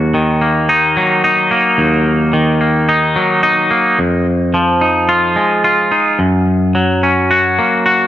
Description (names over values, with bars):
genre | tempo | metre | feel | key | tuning
rock | 109 BPM | 4/4 | straight | Eb minor | A4 = 440 Hz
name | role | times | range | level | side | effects
twangy electric guitar | solo | 0.0-8.1 s | Eb2 to Gb4 | -10 LUFS | equal | analog delay
room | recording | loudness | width
light reverb | none | -11 LUFS | side -12 dB against mid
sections
0.0-8.1 A section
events
none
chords
0.0 Ebm; 4.0 Fm7; 6.2 Gb